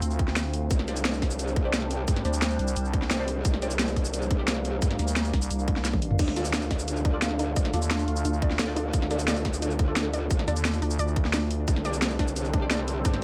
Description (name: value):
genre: dark technical drum and bass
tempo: 175 BPM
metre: 4/4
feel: straight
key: D minor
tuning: A4 = 444 Hz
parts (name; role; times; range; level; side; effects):
- sweeping resonant pad; sustained chords; 0.0-13.2 s; D3 to F4; -36 LUFS; equal; chorus, sidechain pumping
- growling FM bass; bass; 0.0-11.7 s; C2 to Eb2; -30 LUFS; equal; tube saturation
- drum and bass drum kit; drums; 0.0-13.2 s; crash cymbal, hi-hat, shaker, snare drum, toms; -32 LUFS; equal; none
- warbly tape-like pad; texture; 0.0-13.2 s; D4 to G5; -41 LUFS; equal; chorus, built-in reverb, sidechain pumping
- electronic kick drum; drums; 0.2-13.1 s; none; -28 LUFS; equal; overdrive
- growl bass; bass; 0.7-13.2 s; A1 to G2; -33 LUFS; equal; chorus, tube saturation, sidechain pumping
- filtered dub chord stab; stabs; 0.9-12.7 s; F4 to D5; -39 LUFS; equal; phaser, subtle chorus, delay
- warbly dusty pluck; arpeggios; 6.2-13.1 s; D4 to D5; -37 LUFS; equal; chorus, cassette tape, sidechain pumping, delay
room: light reverb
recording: none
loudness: -27 LUFS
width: mono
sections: 0.0-13.2 A section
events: drum fill 5.8-6.2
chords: 0.0 Dm; 0.7 Csus2; 6.2 Dm; 11.7 Csus2